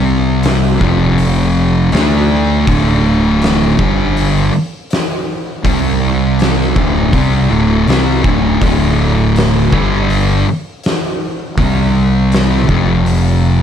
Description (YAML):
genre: stoner and doom metal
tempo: 81 BPM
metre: 4/4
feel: straight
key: D minor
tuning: A4 = 440 Hz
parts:
  - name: thick fuzz guitar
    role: riff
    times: 0.0-13.6 s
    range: D2 to D4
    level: -15 LUFS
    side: left 8 dB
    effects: distortion
  - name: thick fuzz guitar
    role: riff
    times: 0.0-13.6 s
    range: D2 to D4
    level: -15 LUFS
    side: right 8 dB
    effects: distortion
  - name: fuzz fingered electric bass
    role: bass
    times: 0.0-13.6 s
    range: D1 to D2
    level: -17 LUFS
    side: equal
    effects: overdrive
  - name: oversized low-tuned drum kit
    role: drums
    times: 0.4-13.2 s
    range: hi-hat, kick drum, snare drum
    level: -18 LUFS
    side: equal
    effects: none
room: light reverb, studio reverb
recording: dark, warm production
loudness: -10 LUFS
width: side -8 dB against mid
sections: 0.0-13.6 A section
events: none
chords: 0.0 C5; 0.8 F5; 1.9 D5; 3.8 G5; 5.6 C5; 6.8 D5; 9.7 G5; 11.6 C5; 12.7 F5